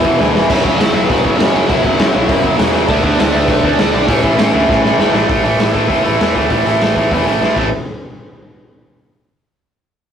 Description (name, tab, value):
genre	punk rock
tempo	200 BPM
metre	4/4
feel	straight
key	A major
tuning	A4 = 440 Hz
part	overdriven semi-hollow guitar	melody	0.0-4.9 s	B3 to F#5	-20 LUFS	equal	none
part	distorted electric guitar	riff	0.0-7.7 s	E2 to D4	-14 LUFS	right 1 dB	overdrive
part	modern bright picked electric bass	bass	0.0-7.7 s	E1 to A2	-20 LUFS	equal	none
part	raw garage drum kit	drums	0.0-7.6 s	crash cymbal, hi-hat, kick drum, snare drum	-16 LUFS	equal	none
room	moderate studio reverb, RT60 0.5 s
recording	rough rehearsal-room recording, warm saturation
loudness	-11 LUFS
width	side -8 dB against mid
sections	0.0-5.3 A section; 5.3-7.7 B section; 7.7-8.9 C section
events	drum fill 0.2, 4.7-5.3, 7.4-7.7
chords	0.5 F#5; 2.9 D5; 4.1 A; 7.7 N.C.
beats	0.19 | 0.49 0.79 1.09 1.39 | 1.69 1.99 2.29 2.59 | 2.89 3.19 3.49 3.79 | 4.09 4.39 4.69 4.99 | 5.29 5.59 5.89 6.20 | 6.50 6.80 7.10 7.40